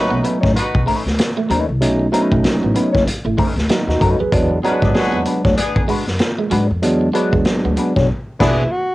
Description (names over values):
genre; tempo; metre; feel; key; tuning
funk; 96 BPM; 4/4; swing 60% on 16ths; unclear; A4 = 440 Hz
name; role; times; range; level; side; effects
warm horn section; second line; 0.0-0.8, 4.6-8.6 s; B3 to D5; -21 LUFS; left 2 dB; cassette tape
barky tine electric piano; stabs; 0.0-8.6 s; F#3 to B4; -18 LUFS; right 1 dB; overdrive, phaser, cassette tape
hollow-body jazz guitar; accompaniment; 0.1-8.6 s; G#3 to C#5; -21 LUFS; left 3 dB; wah, cassette tape
clean electric guitar; riff; 0.1-7.9 s; F#3 to B3; -23 LUFS; right 5 dB; cassette tape
upright bass; bass; 0.1-8.6 s; E1 to G#2; -21 LUFS; equal; none
vintage drum kit; drums; 0.2-8.6 s; crash cymbal, hi-hat, kick drum, snare drum; -19 LUFS; equal; cassette tape
breathy alto saxophone; melody; 8.4-8.9 s; E4 to F#4; -19 LUFS; equal; cassette tape
room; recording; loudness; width
little or no reverb; home recording on cassette; -14 LUFS; side -18 dB against mid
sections
0.0-8.9 A section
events
band accent 8.1-8.9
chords
0.0 B9; 4.3 E9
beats
0.56 1.18 | 1.81 2.44 3.07 3.69 | 4.32 4.95 5.58 6.21 | 6.83 7.46 8.09 8.72